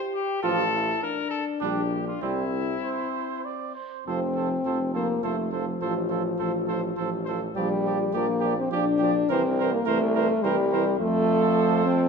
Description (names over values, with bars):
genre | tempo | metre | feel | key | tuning
classical, brass quintet | 103 BPM | 3/4 | rubato | F major | A4 = 441 Hz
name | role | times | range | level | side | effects
warm French horn | accompaniment | 0.0-12.1 s | F3 to G4 | -26 LUFS | left 3 dB | none
clear trumpet | melody | 0.1-12.1 s | E4 to D5 | -33 LUFS | left 5 dB | none
clear trumpet | second line | 0.4-12.1 s | C4 to D5 | -32 LUFS | right 9 dB | none
clear trombone | accompaniment | 0.4-12.1 s | E3 to G3 | -32 LUFS | right 5 dB | none
bright bass trombone | bass | 0.4-12.1 s | F1 to F2 | -29 LUFS | right 2 dB | none
room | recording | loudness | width
wet recital hall reverb, RT60 1.5 s | dark, warm production | -23 LUFS | side -5 dB against mid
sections
0.0-4.1 A section; 4.1-12.1 B section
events
none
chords
0.4 F/A; 1.6 Gm/Bb; 2.2 C; 4.1 F; 5.8 F/A; 7.6 Gm7/Bb; 9.3 C7; 11.0 F